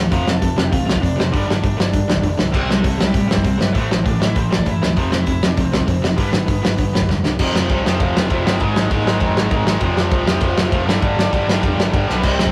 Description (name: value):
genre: punk rock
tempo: 198 BPM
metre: 4/4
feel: straight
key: unclear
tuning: A4 = 445 Hz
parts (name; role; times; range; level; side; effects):
- distorted electric guitar; riff; 0.0-12.5 s; F2 to C4; -30 LUFS; equal; none
- tight distorted guitar; riff; 0.0-12.5 s; F2 to C4; -24 LUFS; equal; distortion
- overdriven picked electric bass; bass; 0.0-12.5 s; F1 to A2; -26 LUFS; equal; none
- crunchy overdriven guitar; melody; 0.1-12.5 s; G3 to A5; -31 LUFS; equal; none
- loose indie drum kit; drums; 0.1-12.5 s; crash cymbal, hi-hat, kick drum, ride cymbal, snare drum; -20 LUFS; equal; none
- distorted electric guitar; riff; 7.4-12.5 s; F2 to C4; -27 LUFS; equal; overdrive
room: moderate small room reverb, RT60 0.6 s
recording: rough rehearsal-room recording, warm saturation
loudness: -17 LUFS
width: mono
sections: 0.0-7.4 A section; 7.4-12.2 B section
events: drum fill 7.1-7.4, 12.1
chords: 0.1 F; 1.3 G5; 2.5 C5; 3.8 Am; 5.0 F5; 6.2 G; 7.4 F5; 8.6 Ab; 9.8 F5; 10.9 G5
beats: | 0.12 0.42 0.72 1.03 | 1.33 1.64 1.94 2.24 | 2.54 2.85 3.15 3.45 | 3.75 4.06 4.36 4.66 | 4.97 5.27 5.57 5.88 | 6.18 6.48 6.79 7.09 | 7.39 7.70 8.00 8.30 | 8.61 8.91 9.22 9.52 | 9.82 10.13 10.43 10.73 | 11.04 11.34 11.64 11.94 | 12.25